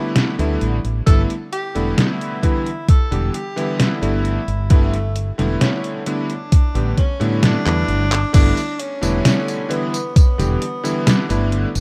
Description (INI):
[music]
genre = vaporwave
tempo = 66 BPM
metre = 4/4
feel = straight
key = unclear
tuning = A4 = 440 Hz
[part]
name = warm tenor saxophone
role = melody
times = 0.0-11.8 s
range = A3 to A4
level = -29 LUFS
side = equal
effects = tape echo
[part]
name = bright electric grand piano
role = accompaniment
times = 0.0-11.7 s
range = D3 to G4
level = -25 LUFS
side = equal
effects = analog chorus
[part]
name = detuned 8-bit digital drum machine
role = drums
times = 0.2-11.8 s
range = crash cymbal, handclaps, hi-hat, snare drum, tambourine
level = -22 LUFS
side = equal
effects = overdrive
[part]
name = mellow fretless electric bass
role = bass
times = 0.4-11.8 s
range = E1 to A2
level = -22 LUFS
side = equal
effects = none
[part]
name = electronic kick drum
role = drums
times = 1.1-10.3 s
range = none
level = -15 LUFS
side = equal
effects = overdrive
[sound]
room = little or no reverb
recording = rough home demo mix, cassette tape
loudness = -18 LUFS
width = mono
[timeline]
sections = 0.0-8.3 A section; 8.3-11.8 B section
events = drum fill 7.7-8.3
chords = 0.0 A9sus4; 1.1 Em7; 6.5 A9sus4; 8.3 Em7